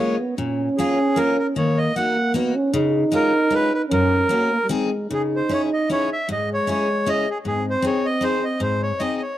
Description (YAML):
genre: alpine folk, alpine dance band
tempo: 153 BPM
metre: 3/4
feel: straight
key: F# major, C# harmonic minor from 5.1 s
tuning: A4 = 439 Hz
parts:
  - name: accordion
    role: melody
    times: 0.0-9.4 s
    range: G#4 to F#5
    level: -22 LUFS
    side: equal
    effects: none
  - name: dark euphonium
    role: second line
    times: 0.0-9.1 s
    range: G3 to D#4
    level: -22 LUFS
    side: right 2 dB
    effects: none
  - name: picked steel-string acoustic guitar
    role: accompaniment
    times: 0.0-9.2 s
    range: F#2 to G#4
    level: -24 LUFS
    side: left 4 dB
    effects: none
room: small room reverb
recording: dry, close 1970s-style studio recording, lossy compression artefacts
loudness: -18 LUFS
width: side -12 dB against mid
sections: 0.0-5.1 A section; 5.1-9.4 B section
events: none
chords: 0.4 A#m7; 1.6 D#m; 2.7 C#add9; 3.9 F#; 4.7 G#; 5.1 C#madd9; 7.5 G#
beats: | 0.38 0.78 1.18 | 1.57 1.97 2.35 | 2.74 3.13 3.52 | 3.91 4.30 4.70 | 5.10 5.50 5.89 | 6.29 6.68 7.07 | 7.46 7.85 8.23 | 8.62 9.02